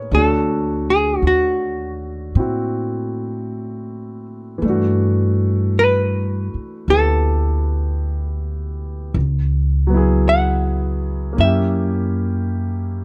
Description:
jazz ballad; 53 BPM; 4/4; swing 69% on 8ths; A4 = 441 Hz
hollow-body jazz guitar; melody; 0.0-13.0 s; F#4 to F#5; -21 LUFS; equal; plate reverb
warm grand piano; accompaniment; 0.0-13.0 s; D3 to C#5; -25 LUFS; equal
upright bass; bass; 0.0-13.0 s; C#2 to A2; -22 LUFS; equal
little or no reverb; dark, warm production; -19 LUFS; mono
0.0-13.0 A section
0.1 D7; 4.6 Gmaj9; 9.2 C#m7; 11.4 F#7b9

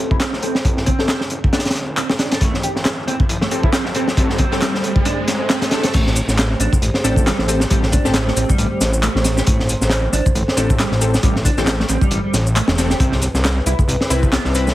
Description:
breakbeat, breaks; 136 BPM; 4/4; swing 56% on 16ths; A minor; A4 = 441 Hz
dark analog pad; sustained chords; 3.5-14.7 s; A3 to E5; -28 LUFS; right 1 dB; chorus, phaser, sidechain pumping
orchestra-hit-like synth stab; stabs; 0.0-14.7 s; C4 to B4; -25 LUFS; left 2 dB; built-in reverb, digital delay
fat analog bass; bass; 0.0-14.7 s; E1 to C2; -21 LUFS; equal; high-pass filter
riser; sound effects; 1.3-5.9 s; -28 LUFS; equal
mellow electric guitar; riff; 0.1-14.4 s; G3 to A4; -25 LUFS; right 2 dB; analog chorus, low-pass filter, digital delay
crunchy breakbeat drum kit; drums; 0.1-14.7 s; crash cymbal, hi-hat, kick drum, snare drum; -18 LUFS; equal
electronic handclaps and shaker; drums; 0.2-14.7 s; -25 LUFS; equal; overdrive
light reverb, small room ambience; heavily compressed radio sound; -15 LUFS; side -15 dB against mid
0.0-5.9 A section; 5.9-14.7 B section
build-up 0.0-5.9; filter sweep on clean electric guitar 0.0-5.9; filter sweep on synth stab 0.0-5.9; riser 1.3-5.9; drop 5.9-14.7
0.0 Am7; 13.0 Cmaj7

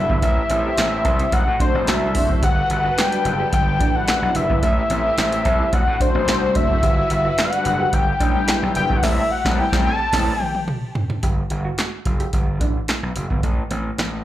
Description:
early-eighties boogie funk; 109 BPM; 4/4; straight; A dorian; A4 = 440 Hz
fat analog lead; melody; 0.0-10.6 s; C5 to A5; -21 LUFS; left 2 dB; slapback echo
mellow synth brass; accompaniment; 0.0-10.3 s; F#3 to C5; -27 LUFS; equal; chorus, slapback echo
warm studio string section; sustained chords; 0.0-11.2 s; G3 to B4; -32 LUFS; equal
gritty slap bass; bass; 0.0-14.2 s; F#1 to A2; -24 LUFS; equal; overdrive
mellow electric guitar; riff; 0.1-14.0 s; A3 to G4; -31 LUFS; right 5 dB; lush chorus, slapback echo
electro analog drum machine; drums; 0.1-14.1 s; crash cymbal, handclaps, hi-hat, kick drum, snare drum, toms; -21 LUFS; equal
light reverb; live gig heard through the venue's PA, club reverb; -17 LUFS; side -13 dB against mid
0.0-11.2 A section; 11.2-14.2 B section
band accent 9.0-11.2; drum fill 10.1-11.2
0.2 Am7; 1.3 D7/A; 2.4 Gmaj7; 3.5 Em7/G; 4.6 Am7; 5.7 D7/A; 6.8 Gmaj7; 7.9 Em7/G; 9.0 Am7; 11.2 N.C.; 12.3 Em7/G; 13.4 Am

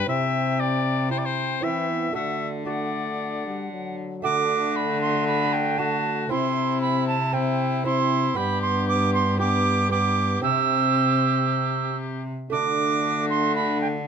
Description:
classical, renaissance-style consort dance; 116 BPM; 4/4; straight; D mixolydian; A4 = 442 Hz
bright oboe; melody; 0.0-14.0 s; E4 to E5; -29 LUFS; left 7 dB
mellow alto recorder; second line; 0.0-13.9 s; F#5 to E6; -25 LUFS; right 8 dB
lute; accompaniment; 0.0-14.1 s; G2 to G4; -31 LUFS; right 4 dB
warm trombone; accompaniment; 0.0-14.0 s; F#3 to C4; -29 LUFS; left 4 dB
rich cello; bass; 0.0-14.1 s; G2 to E3; -28 LUFS; equal
light reverb; close, detailed microphones; -21 LUFS; side -7 dB against mid
0.0-4.2 A section; 4.2-14.1 A section
0.1 C; 2.2 D; 6.3 C; 8.4 G; 10.4 C; 12.5 D

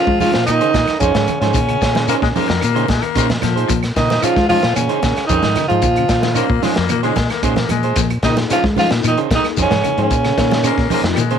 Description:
afrobeat; 112 BPM; 4/4; straight; Bb minor; A4 = 444 Hz
growling tenor saxophone; melody; 0.0-11.0 s; Db4 to F4; -18 LUFS; equal
warm trombone; second line; 0.0-11.0 s; Db3 to F3; -23 LUFS; right 11 dB
electric guitar at the edge of break-up; stabs; 0.0-11.4 s; Db4 to C5; -23 LUFS; right 12 dB
semi-hollow electric guitar; arpeggios; 0.1-11.4 s; Db3 to F3; -27 LUFS; left 13 dB; spring reverb
fingered electric bass; bass; 0.1-11.4 s; F2 to Ab3; -19 LUFS; equal
crunchy breakbeat drum kit; drums; 0.1-11.4 s; hi-hat, kick drum, snare drum; -21 LUFS; equal
congas; percussion; 0.2-11.3 s; -26 LUFS; right 10 dB
shekere; percussion; 0.2-11.3 s; -26 LUFS; left 7 dB
claves; percussion; 0.5-11.3 s; -32 LUFS; right 13 dB
growling baritone saxophone; second line; 2.1-11.4 s; F3 to Bb3; -21 LUFS; left 13 dB
mellow tonewheel organ; accompaniment; 8.2-11.2 s; Bb3 to Ab4; -25 LUFS; left 14 dB; slow rotary speaker
light reverb, small room ambience; 1960s-style stereo with parts hard left and right; -13 LUFS; side -8 dB against mid
0.0-11.4 A section
0.0 Bbm11

